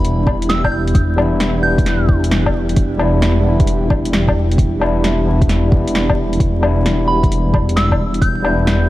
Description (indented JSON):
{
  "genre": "future garage",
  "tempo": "132 BPM",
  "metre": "4/4",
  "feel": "swing 67% on 16ths",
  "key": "E minor",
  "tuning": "A4 = 440 Hz",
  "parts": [
    { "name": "soft synth bell", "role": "melody", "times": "0.0-2.1, 7.1-8.9 s", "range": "B5 to G6", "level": "-22 LUFS", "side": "right 2 dB", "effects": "chorus, analog delay" },
    { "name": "overdriven tine electric piano", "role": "accompaniment", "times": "0.0-8.9 s", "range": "G3 to E4", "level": "-20 LUFS", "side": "left 2 dB", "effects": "sidechain pumping, analog delay" },
    { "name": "granular cloud pad", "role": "sustained chords", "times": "0.0-8.9 s", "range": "D4 to G4", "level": "-25 LUFS", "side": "right 1 dB", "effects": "built-in reverb, sidechain pumping" },
    { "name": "dark detuned saw bass", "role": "bass", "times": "0.0-8.9 s", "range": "E1", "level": "-17 LUFS", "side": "equal", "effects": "sidechain pumping" },
    { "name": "deep house drum kit", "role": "drums", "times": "0.0-8.8 s", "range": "hi-hat, snare drum, woodblock", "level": "-21 LUFS", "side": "left 1 dB", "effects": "none" },
    { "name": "electronic kick drum", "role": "drums", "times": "0.3-8.3 s", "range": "none", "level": "-16 LUFS", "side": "equal", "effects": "none" }
  ],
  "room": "light reverb",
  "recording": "vinyl crackle",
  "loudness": "-13 LUFS",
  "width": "side -16 dB against mid",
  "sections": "0.0-8.9 A section",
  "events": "none",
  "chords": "0.0 Em7"
}